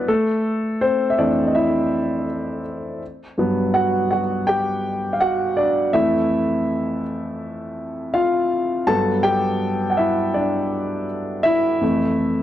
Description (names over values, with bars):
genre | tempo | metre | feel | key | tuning
soul | 82 BPM | 4/4 | swing 54% on 16ths | G major | A4 = 440 Hz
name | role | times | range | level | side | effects
warm concert grand piano | solo | 0.0-12.4 s | F2 to A5 | -18 LUFS | equal | none
room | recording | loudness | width
light reverb | dark, warm production | -18 LUFS | side -12 dB against mid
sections
0.0-12.4 A section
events
grand piano solo 0.0-12.4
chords
0.1 Fmaj7; 3.0 Gmaj7; 5.9 Fmaj7; 8.9 Gmaj7; 11.8 Fmaj7